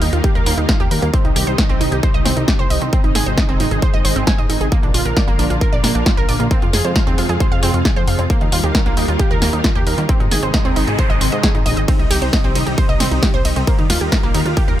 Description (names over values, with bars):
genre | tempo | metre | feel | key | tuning
uplifting trance | 134 BPM | 4/4 | straight | C minor | A4 = 440 Hz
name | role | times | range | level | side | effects
analog string pad | sustained chords | 0.0-14.8 s | C3 to F4 | -23 LUFS | equal | ensemble chorus, sidechain pumping
wide unison pluck | arpeggios | 0.0-14.7 s | Bb3 to Ab5 | -22 LUFS | right 4 dB | sidechain pumping, ping-pong delay
plucky analog bass | bass | 0.0-14.8 s | Eb1 to Ab2 | -20 LUFS | equal | sidechain pumping
punchy analog drum machine | drums | 0.0-14.8 s | hi-hat, ride cymbal, snare drum | -21 LUFS | left 1 dB | sidechain pumping on hats, sidechain pumping on cymbals
electronic kick drum | drums | 0.2-14.7 s | none | -16 LUFS | equal | none
noise sweep | sound effects | 10.6-11.9 s | none | -30 LUFS | right 1 dB | none
room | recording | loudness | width
digital ambience | none | -14 LUFS | side -12 dB against mid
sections
0.0-14.8 A section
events
noise sweep 10.6-11.9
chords
0.0 Ebadd9; 1.1 Cm; 2.9 Ab; 4.7 Bb; 6.5 Fm; 8.3 Ebadd9; 10.1 Ab; 11.9 Cm; 13.7 Ebadd9